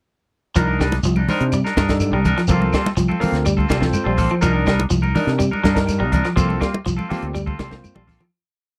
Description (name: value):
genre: afrobeat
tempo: 124 BPM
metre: 4/4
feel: straight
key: C dorian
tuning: A4 = 440 Hz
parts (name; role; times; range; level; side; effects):
- overdriven tine electric piano; accompaniment; 0.6-8.0 s; Bb3 to C5; -28 LUFS; equal; none
- electric guitar at the edge of break-up; arpeggios; 0.6-8.3 s; F3 to G3; -25 LUFS; equal; none
- clean electric guitar; stabs; 0.6-8.2 s; G3 to Bb4; -26 LUFS; equal; none
- fingered electric bass; bass; 0.6-8.2 s; Bb1 to C3; -23 LUFS; equal; none
- compact cocktail drum kit; drums; 0.6-8.3 s; hi-hat, kick drum, snare drum; -25 LUFS; equal; none
- shekere; percussion; 0.6-8.2 s; none; -30 LUFS; equal; none
- claves; percussion; 0.8-8.3 s; none; -40 LUFS; equal; none
- congas; percussion; 0.9-8.3 s; none; -28 LUFS; equal; none
room: little or no reverb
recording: dry, close 1970s-style studio recording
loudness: -19 LUFS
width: mono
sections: 0.6-8.3 groove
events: tine electric piano fill 3.7-4.4; fade-out 6.4-8.3; drum fill 7.6-8.3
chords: 0.6 Cm9; 2.5 Gm11/C; 4.4 Cm9; 6.4 Gm11/C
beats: | 0.56 1.04 1.52 2.01 | 2.49 2.97 3.46 3.94 | 4.42 4.91 5.39 5.88 | 6.37 6.86 7.34 7.83